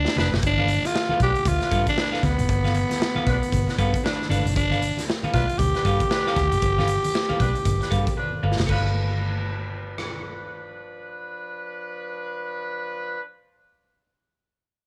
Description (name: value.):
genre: funk.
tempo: 116 BPM.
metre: 4/4.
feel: swing 60% on 16ths.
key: G mixolydian.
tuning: A4 = 440 Hz.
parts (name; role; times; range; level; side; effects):
raspy tenor saxophone; melody; 0.0-8.2 s; B3 to G4; -27 LUFS; equal; none.
vintage muted fingered electric bass; bass; 0.0-13.2 s; F1 to G2; -27 LUFS; equal; none.
raw garage drum kit; drums; 0.1-10.1 s; crash cymbal, hi-hat, kick drum, rim click, snare drum; -29 LUFS; equal; none.
mellow horn section; second line; 0.2-13.2 s; F3 to B4; -35 LUFS; equal; none.
congas; percussion; 0.2-8.9 s; none; -34 LUFS; equal; none.
semi-hollow electric guitar; accompaniment; 0.4-13.3 s; A4 to F5; -34 LUFS; equal; none.
room: light reverb, studio ambience.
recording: none.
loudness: -23 LUFS.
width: mono.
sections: 0.4-8.7 A section; 8.7-12.8 B section.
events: break 0.0-0.4; drum fill 0.0-0.4, 8.2-8.7; band accent 0.0-0.4.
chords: 0.4 G9.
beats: | 0.43 0.95 1.46 1.98 | 2.49 3.01 3.52 4.04 | 4.56 5.07 5.59 6.11 | 6.62 7.14 7.66 8.17 | 8.69 9.21 9.72 10.24 | 10.76 11.28 11.79 12.31.